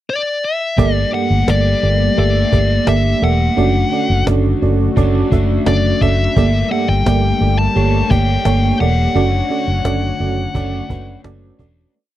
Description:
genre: 1980s-style pop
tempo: 86 BPM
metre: 4/4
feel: straight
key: D major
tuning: A4 = 441 Hz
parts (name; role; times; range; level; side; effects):
- high-gain lead guitar; melody; 0.1-11.2 s; D5 to A5; -20 LUFS; left 3 dB; distortion, slapback echo
- FM electric piano with tremolo; accompaniment; 0.8-12.0 s; G2 to E5; -20 LUFS; right 8 dB; none
- biting overdriven guitar; accompaniment; 0.8-12.0 s; D3 to G4; -26 LUFS; left 6 dB; analog chorus
- brassy analog pad; sustained chords; 0.8-11.9 s; A3 to C#5; -22 LUFS; left 2 dB; chorus
- vintage muted fingered electric bass; bass; 0.8-11.8 s; E1 to G1; -16 LUFS; equal; none
- cajon; drums; 0.8-11.9 s; none; -19 LUFS; equal; none
room: little or no reverb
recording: dry, close 1970s-style studio recording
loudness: -13 LUFS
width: side -13 dB against mid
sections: 0.0-0.8 pickup bar; 0.8-11.9 chorus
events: fade-out 9.2-11.9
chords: 0.0 N.C.; 0.8 Gmadd9; 3.6 Dmaj7/F#; 6.4 Gmadd9; 9.2 Dmaj7/F#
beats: 0.09 | 0.78 1.48 2.18 2.88 | 3.57 4.27 4.97 5.67 | 6.36 7.06 7.76 8.46 | 9.15 9.85 10.55 11.25

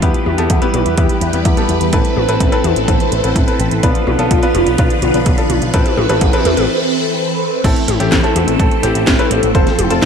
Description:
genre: italo disco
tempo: 126 BPM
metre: 4/4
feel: straight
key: A minor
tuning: A4 = 439 Hz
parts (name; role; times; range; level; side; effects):
- phased string machine; sustained chords; 0.0-10.1 s; D3 to B4; -17 LUFS; equal; ensemble chorus, phaser
- clear baby grand piano; stabs; 0.0-10.1 s; A3 to C5; -19 LUFS; left 2 dB; ping-pong delay
- picked electric bass with an envelope filter; bass; 0.0-10.1 s; F1 to E2; -18 LUFS; equal; none
- electronic kick drum; drums; 0.0-10.1 s; none; -16 LUFS; equal; small room ambience
- house drum kit; drums; 0.0-10.1 s; crash cymbal, handclaps, hi-hat, snare drum, toms; -21 LUFS; left 2 dB; small room ambience, gated reverb
room: light reverb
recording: none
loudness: -12 LUFS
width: side -7 dB against mid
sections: 0.0-7.6 A section; 7.6-10.1 B section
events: drum fill 0.0-6.7; break 6.7-7.6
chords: 0.0 Em; 1.9 Amadd9; 3.8 Bdim; 5.7 Amadd9; 7.6 Am; 9.5 F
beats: | 0.02 0.50 0.98 1.45 | 1.93 2.40 2.88 3.36 | 3.83 4.31 4.79 5.26 | 5.74 6.21 6.69 7.17 | 7.64 8.12 8.60 9.07 | 9.55 10.02

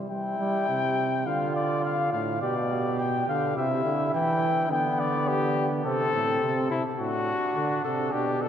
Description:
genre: classical, imitative canzona for brass ensemble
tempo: 105 BPM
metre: 4/4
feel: straight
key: C major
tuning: A4 = 439 Hz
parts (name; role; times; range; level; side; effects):
- warm trombone; accompaniment; 0.0-8.5 s; A2 to G3; -29 LUFS; right 2 dB; none
- mellow trumpet; melody; 0.1-8.5 s; E4 to G5; -27 LUFS; left 4 dB; none
- warm flugelhorn; second line; 0.1-8.5 s; B3 to G4; -30 LUFS; right 3 dB; none
room: wet cathedral reverb, RT60 4.4 s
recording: dark, warm production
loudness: -24 LUFS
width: side -9 dB against mid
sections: 0.1-8.5 A section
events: none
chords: 0.1 C/G; 1.3 Dm; 2.4 G/B; 3.6 C; 4.7 G/D; 5.8 Am; 7.0 D/A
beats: | 0.10 0.68 1.26 1.84 | 2.41 2.99 3.56 4.13 | 4.71 5.27 5.85 6.42 | 6.99 7.56 8.13

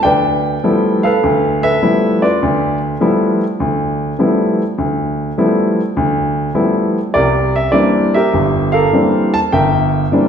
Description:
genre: solo jazz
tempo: 101 BPM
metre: 4/4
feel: swing 68% on 8ths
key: G mixolydian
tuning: A4 = 440 Hz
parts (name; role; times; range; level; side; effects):
- warm baby grand piano; solo; 0.0-10.3 s; G1 to A5; -12 LUFS; equal; none
room: wet recital hall reverb, RT60 1.3 s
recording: recorded in a church or concert hall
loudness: -12 LUFS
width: side -7 dB against mid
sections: 0.0-10.3 A section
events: none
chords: 0.0 G13; 7.1 C13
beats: | 0.04 0.63 1.22 1.81 | 2.40 3.00 3.59 4.18 | 4.77 5.37 5.96 6.55 | 7.14 7.74 8.33 8.92 | 9.51 10.11

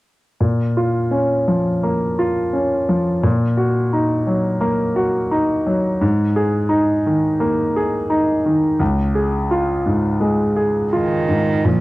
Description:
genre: neoclassical piano and strings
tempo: 86 BPM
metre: 4/4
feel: rubato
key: Bb minor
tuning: A4 = 440 Hz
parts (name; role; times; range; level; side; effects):
- clear concert grand piano; accompaniment; 0.4-11.8 s; Db2 to Ab4; -16 LUFS; equal; cassette tape
- warm cello; second line; 10.9-11.8 s; Eb3 to F3; -19 LUFS; right 4 dB; cassette tape
room: moderate studio reverb, RT60 0.6 s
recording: home recording on cassette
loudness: -16 LUFS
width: side -19 dB against mid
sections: 0.4-11.7 A section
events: none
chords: 0.4 Bbm; 3.2 Ebm/Bb; 6.0 Absus2; 8.8 Db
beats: | 0.40 1.12 1.83 2.54 | 3.24 3.94 4.63 5.33 | 6.02 6.71 7.41 8.10 | 8.80 9.50 10.21 10.93 | 11.66

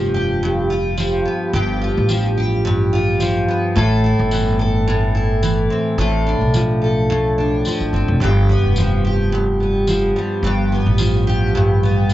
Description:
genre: acoustic pop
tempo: 108 BPM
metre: 4/4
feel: swing 55% on 16ths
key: G mixolydian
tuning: A4 = 440 Hz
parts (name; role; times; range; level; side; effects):
- picked steel-string acoustic guitar; accompaniment; 0.0-12.1 s; G2 to A4; -17 LUFS; equal; double-tracked left and right
- upright bass; bass; 0.0-12.1 s; F1 to B1; -19 LUFS; equal; none
- tambourine; percussion; 1.0-12.1 s; none; -29 LUFS; left 3 dB; none
room: moderate small room ambience, RT60 0.5 s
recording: worn, warbling old tape, cassette tape, warbly pitch drift, nothing above 7.7 kHz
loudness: -15 LUFS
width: side -14 dB against mid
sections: 0.0-12.1 A section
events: none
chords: 0.0 G7; 3.8 Am; 6.0 Dm7/A; 8.2 G7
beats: 0.43 0.98 | 1.54 2.09 2.65 3.20 | 3.76 4.32 4.87 5.43 | 5.98 6.54 7.09 7.65 | 8.21 8.76 9.32 9.87 | 10.43 10.99 11.54 12.10

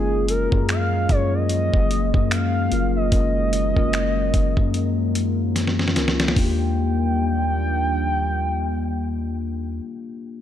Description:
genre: contemporary R&B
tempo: 74 BPM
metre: 4/4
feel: swing 58% on 16ths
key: unclear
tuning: A4 = 440 Hz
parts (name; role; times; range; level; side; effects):
- gliding portamento lead; melody; 0.0-9.8 s; Ab4 to G5; -26 LUFS; equal; chorus, tape echo
- mellow tine electric piano; accompaniment; 0.0-10.4 s; Bb3 to Eb5; -28 LUFS; left 6 dB; none
- deep dark ambient pad; sustained chords; 0.0-9.8 s; Eb3 to F4; -27 LUFS; left 2 dB; chorus, built-in reverb
- long sustained 808-style bass; bass; 0.0-9.8 s; Gb1 to Gb2; -24 LUFS; equal; none
- dusty soul sampler-style drum kit; drums; 0.3-6.6 s; finger snaps, hi-hat, kick drum, snare drum; -22 LUFS; equal; none
room: light reverb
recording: dark, warm production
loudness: -19 LUFS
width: side -10 dB against mid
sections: 0.0-6.4 A section; 6.4-9.6 B section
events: drum fill 5.6-6.4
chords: 0.0 Gbmaj9; 6.4 Ebmaj9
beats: 0.69 1.50 2.31 | 3.12 3.93 4.74 5.55 | 6.37 7.18 7.99 8.80

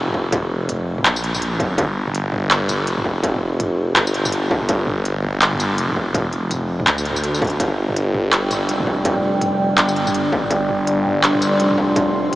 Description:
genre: half-time drum and bass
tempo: 165 BPM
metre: 4/4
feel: swing 60% on 16ths, half-time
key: G minor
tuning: A4 = 440 Hz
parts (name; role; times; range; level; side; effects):
- phased detuned saw bass; bass; 0.0-12.4 s; F1 to D2; -21 LUFS; equal; phaser
- electronic kick drum; drums; 0.1-12.0 s; none; -22 LUFS; equal; distortion
- industrial drum kit; drums; 0.1-12.4 s; handclaps, hi-hat, tambourine, toms; -21 LUFS; equal; none
- deep dark ambient pad; sustained chords; 8.3-12.4 s; G3 to C6; -19 LUFS; equal; chorus, built-in reverb, sidechain pumping
room: wet huge ambient reverb, RT60 6.2 s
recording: dreamy mix soaked in reverb, small speaker sound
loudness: -17 LUFS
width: side -16 dB against mid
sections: 0.0-12.4 A section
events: none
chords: 0.0 G5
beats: | 0.33 0.69 1.05 1.42 | 1.78 2.14 2.51 2.87 | 3.23 3.60 3.96 4.33 | 4.69 5.05 5.42 5.78 | 6.14 6.51 6.87 7.23 | 7.60 7.96 8.32 8.69 | 9.05 9.42 9.78 10.14 | 10.51 10.87 11.23 11.60 | 11.96 12.32

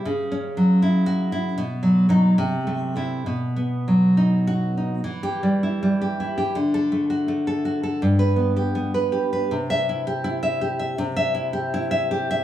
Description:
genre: romantic piece for solo classical guitar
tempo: 64-83 BPM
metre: 2/4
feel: rubato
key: E minor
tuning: A4 = 440 Hz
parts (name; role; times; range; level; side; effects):
- nylon-string guitar; solo; 0.0-12.4 s; G2 to E5; -20 LUFS; equal; none
room: moderate recital hall reverb, RT60 1.6 s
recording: small room ambience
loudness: -20 LUFS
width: side -12 dB against mid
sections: 0.0-5.0 A section; 5.0-12.4 B section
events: none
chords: 0.0 F#5/C#; 1.6 B; 2.4 Am/C; 3.3 B; 5.0 Em; 6.6 D; 8.0 G; 9.5 C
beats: | 0.04 0.82 | 1.58 2.39 | 3.28 4.19 | 5.05 5.82 | 6.56 7.30 | 8.02 8.76 | 9.52 10.27 | 11.00 11.74

